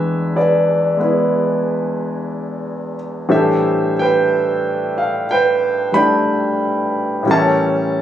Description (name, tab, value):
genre	jazz ballad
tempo	60 BPM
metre	4/4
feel	swing 68% on 8ths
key	unclear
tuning	A4 = 440 Hz
part	clear concert grand piano	solo	0.0-8.0 s	E2 to B5	-15 LUFS	equal	none
room	light reverb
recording	recorded on a phone in the room, club reverb, compression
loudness	-14 LUFS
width	side -10 dB against mid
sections	0.0-8.0 A section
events	none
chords	0.0 E7; 3.3 Am11; 7.3 A7b9